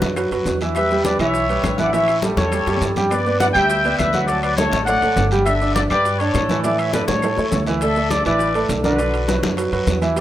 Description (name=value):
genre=latin, salsa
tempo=204 BPM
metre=4/4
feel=straight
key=D major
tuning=A4 = 440 Hz
part: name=clear grand piano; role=accompaniment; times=0.0-10.2 s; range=D3 to G5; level=-20 LUFS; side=right 2 dB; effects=none
part: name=upright bass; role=bass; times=0.0-10.2 s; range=G1 to A2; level=-24 LUFS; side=equal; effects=none
part: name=bongos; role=percussion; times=0.0-10.2 s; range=none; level=-33 LUFS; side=left 5 dB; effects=none
part: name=congas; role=percussion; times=0.0-10.2 s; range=none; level=-26 LUFS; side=left 2 dB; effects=none
part: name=guiro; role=percussion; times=0.0-10.2 s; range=none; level=-33 LUFS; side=left 3 dB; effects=none
part: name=maracas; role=percussion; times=0.0-10.2 s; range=none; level=-39 LUFS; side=right 2 dB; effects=none
part: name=timbales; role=percussion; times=0.0-10.2 s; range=none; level=-32 LUFS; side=right 5 dB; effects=none
part: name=claves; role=percussion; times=0.2-7.4 s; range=none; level=-38 LUFS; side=left 3 dB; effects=none
part: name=clear trumpet section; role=melody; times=0.8-10.2 s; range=E4 to G5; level=-20 LUFS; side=left 1 dB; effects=none
room=light reverb, small room ambience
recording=rough home demo mix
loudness=-16 LUFS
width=side -12 dB against mid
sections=0.0-7.8 A section; 7.8-10.2 A section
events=drum fill 2.7-3.1, 6.9-7.8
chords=0.0 B5; 0.8 Em; 1.9 A7; 3.1 G; 4.3 Dmaj7; 5.5 Gsus2; 6.6 Asus4; 7.2 A; 7.8 Dsus2; 9.0 Bm